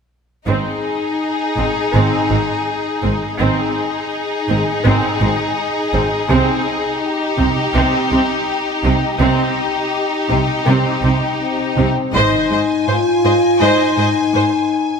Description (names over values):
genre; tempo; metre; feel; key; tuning
cinematic; 82 BPM; 4/4; straight; Ab major; A4 = 440 Hz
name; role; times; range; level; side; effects
rich studio violin section; melody; 0.5-15.0 s; G4 to Ab5; -22 LUFS; left 5 dB; none
clear symphonic violin section; second line; 0.5-14.4 s; Eb4 to Eb5; -22 LUFS; left 1 dB; none
clear symphonic viola section; accompaniment; 0.5-14.4 s; C4 to C5; -21 LUFS; right 2 dB; none
bright symphonic cello section; bass; 0.5-14.4 s; Ab2 to C3; -21 LUFS; right 2 dB; none
clear symphonic double bass section; bass; 0.5-12.5 s; Ab1 to C2; -20 LUFS; right 2 dB; none
warm French horn section; sustained chords; 11.4-15.0 s; C4 to F4; -16 LUFS; left 3 dB; none
room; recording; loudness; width
moderate scoring stage reverb, RT60 1.6 s; none; -14 LUFS; side -6 dB against mid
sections
0.5-12.1 A section; 12.1-15.0 B section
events
none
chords
0.5 Ab; 6.3 Cm; 12.1 Ab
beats
| 0.49 1.22 1.95 2.68 | 3.41 4.14 4.86 5.58 | 6.31 7.03 7.75 8.48 | 9.21 9.94 10.67 11.40 | 12.15 12.88 13.62 14.35